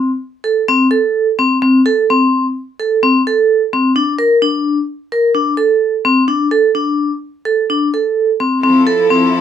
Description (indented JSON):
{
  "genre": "contemporary instrumental, chamber music in an uneven meter",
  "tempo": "128 BPM",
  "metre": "5/4",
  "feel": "straight",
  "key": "unclear",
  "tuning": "A4 = 440 Hz",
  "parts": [
    { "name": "vibraphone with hard mallets", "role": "arpeggios", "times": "0.0-9.4 s", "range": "C4 to Bb4", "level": "-11 LUFS", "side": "equal", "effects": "none" },
    { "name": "bright studio string section", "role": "sustained chords", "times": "8.6-9.4 s", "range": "F3 to A4", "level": "-20 LUFS", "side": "left 4 dB", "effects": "none" }
  ],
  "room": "moderate studio ambience, RT60 0.5 s",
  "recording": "none",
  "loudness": "-12 LUFS",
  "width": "side -9 dB against mid",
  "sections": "0.0-9.4 A section",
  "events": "none",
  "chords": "0.0 Am/C; 4.0 Bbmaj7; 6.3 D5; 8.6 Fmaj7"
}